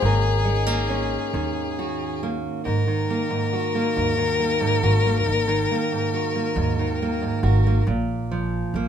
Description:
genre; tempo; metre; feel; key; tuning
acoustic folk-pop ballad; 46 BPM (dotted quarters); 6/8; straight; unclear; A4 = 436 Hz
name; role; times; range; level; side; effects
electric guitar through a small old amp; melody; 0.0-1.8 s; Bb4; -29 LUFS; left 4 dB; harmonic tremolo
rich violin; second line; 0.0-7.8 s; Ab4 to Bb4; -25 LUFS; left 6 dB; none
fingerpicked steel-string acoustic guitar; accompaniment; 0.0-8.9 s; Ab2 to Gb4; -24 LUFS; right 4 dB; none
upright bass; bass; 0.0-8.9 s; Ab1 to Eb2; -24 LUFS; equal; none
room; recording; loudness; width
light reverb; minimal, uncompressed stereo recording; -20 LUFS; side -9 dB against mid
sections
0.0-2.7 A section; 2.7-7.9 B section; 7.9-8.9 C section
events
none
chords
0.0 Ab9sus4; 2.7 Absus2; 7.9 Bb5

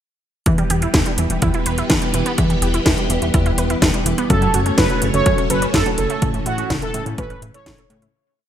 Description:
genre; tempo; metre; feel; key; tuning
italo disco; 125 BPM; 4/4; straight; E dorian; A4 = 440 Hz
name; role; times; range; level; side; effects
string machine, full ensemble; sustained chords; 0.5-8.1 s; E3 to C#5; -24 LUFS; equal; phaser, ensemble chorus
wide unison pluck; arpeggios; 0.5-8.1 s; C#3 to B4; -25 LUFS; right 3 dB; ping-pong delay
chorused synth bass; bass; 0.5-8.1 s; E1 to A2; -21 LUFS; equal; none
electronic kick drum; drums; 0.5-7.8 s; none; -21 LUFS; equal; overdrive
house drum kit; drums; 0.5-8.1 s; hi-hat, snare drum; -22 LUFS; equal; overdrive
analog synth brass; melody; 4.3-8.0 s; F#4 to C#5; -22 LUFS; right 3 dB; chorus, ping-pong delay
mellow tine electric piano; stabs; 4.3-8.1 s; A2 to A4; -27 LUFS; left 4 dB; medium stereo tremolo
room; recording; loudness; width
light reverb; bright 1980s-style digital production; -15 LUFS; side -10 dB against mid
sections
0.5-8.1 verse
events
fade-out 5.6-8.1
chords
0.5 Em; 4.3 F#m; 6.2 A

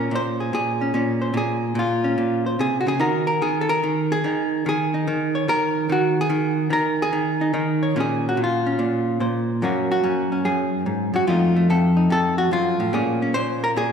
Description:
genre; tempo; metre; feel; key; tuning
solo jazz; 145 BPM; 4/4; swing 67% on 8ths; Bb minor; A4 = 440 Hz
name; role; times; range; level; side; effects
vintage hollow-body jazz guitar; solo; 0.0-13.9 s; F2 to Db5; -19 LUFS; equal; none
room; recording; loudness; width
wet scoring stage reverb, RT60 2.2 s; recorded in a church or concert hall; -19 LUFS; side -7 dB against mid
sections
0.0-13.9 A section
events
none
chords
0.0 Bbm9; 3.0 Ebm; 8.0 Bbmadd9; 9.6 Gb; 11.3 F7; 12.9 Bbm7

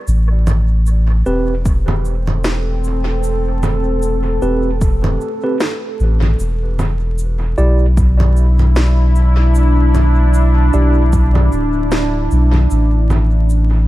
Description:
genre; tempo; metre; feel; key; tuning
ambient dub; 76 BPM; 4/4; swing 57% on 16ths; A minor; A4 = 439 Hz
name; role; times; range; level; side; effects
soft dub sub bass; bass; 0.1-13.9 s; D1 to B1; -13 LUFS; equal; none
electronic cabasa, congas and snare drum; drums; 0.1-13.7 s; none; -22 LUFS; right 1 dB; overdrive, low-pass filter on perc, low-pass filter on snare, low-pass filter on room, dub echo
deep dark ambient pad; sustained chords; 1.8-13.9 s; C4 to A4; -21 LUFS; equal; chorus, built-in reverb
mellow tine electric piano; stabs; 1.3-11.0 s; C4 to D5; -24 LUFS; right 3 dB; slow stereo tremolo, dub echo
electronic kick drum; drums; 1.7-11.3 s; none; -16 LUFS; equal; none
room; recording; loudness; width
little or no reverb; vinyl crackle; -12 LUFS; side -16 dB against mid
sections
0.1-13.9 A section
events
none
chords
0.1 Am; 6.4 E7(no3); 12.7 Am

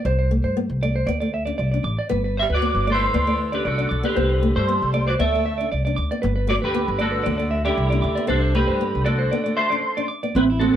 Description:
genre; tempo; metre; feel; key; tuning
highlife; 116 BPM; 4/4; swing 53% on 16ths; unclear; A4 = 440 Hz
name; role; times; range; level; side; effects
clean electric guitar; arpeggios; 0.0-10.8 s; C4 to D6; -25 LUFS; right 3 dB; none
nylon-string guitar; accompaniment; 0.1-10.8 s; G3 to D4; -27 LUFS; left 2 dB; none
upright bass; bass; 0.1-10.8 s; G1 to G2; -23 LUFS; equal; none
clean electric guitar; melody; 2.4-10.8 s; D4 to E5; -23 LUFS; right 1 dB; ensemble chorus
growling tenor saxophone; second line; 2.4-9.8 s; C3 to A3; -30 LUFS; left 1 dB; none
room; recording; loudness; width
moderate small room reverb, RT60 0.5 s; none; -19 LUFS; side -10 dB against mid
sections
0.0-10.3 A section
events
break 9.3-10.3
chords
0.0 Csus2; 1.1 D5; 2.1 G; 3.1 D; 4.2 Csus2; 5.2 Dsus2; 6.2 G; 7.3 Dadd9; 8.3 Csus2; 9.3 Dadd9

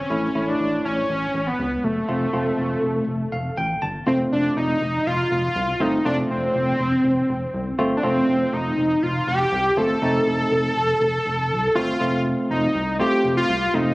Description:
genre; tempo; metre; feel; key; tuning
synth-pop; 121 BPM; 4/4; straight; unclear; A4 = 440 Hz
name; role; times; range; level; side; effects
wide unison lead; melody; 0.0-13.9 s; A3 to A4; -21 LUFS; equal; analog delay
rubbery square bass; bass; 0.0-13.9 s; F1 to C#2; -28 LUFS; equal; none
barky tine electric piano; accompaniment; 0.1-13.9 s; A3 to A5; -24 LUFS; equal; none
room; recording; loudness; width
moderate plate reverb, RT60 2.9 s; recorded on a phone in the room, studio ambience; -19 LUFS; side -20 dB against mid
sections
0.0-4.1 A section; 4.1-12.0 B section; 12.0-13.9 C section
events
tine electric piano fill 3.1-4.1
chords
0.1 A; 2.1 F; 12.0 F7

